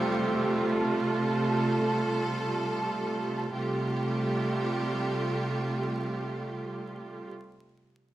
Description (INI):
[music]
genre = pop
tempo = free time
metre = none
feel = none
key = F major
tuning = A4 = 439 Hz
[part]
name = warm upright piano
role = accompaniment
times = 0.0-0.8 s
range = C3 to A4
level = -34 LUFS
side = left 2 dB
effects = none
[part]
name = clear studio string section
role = sustained chords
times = 0.0-7.3 s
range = C3 to A4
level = -27 LUFS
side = right 1 dB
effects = none
[sound]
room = moderate studio reverb, RT60 0.6 s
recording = rough home demo mix, vinyl crackle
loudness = -27 LUFS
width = side -14 dB against mid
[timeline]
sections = 0.0-3.6 A section; 3.6-6.5 B section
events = slowing down 0.0-3.6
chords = 0.0 Fadd9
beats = free time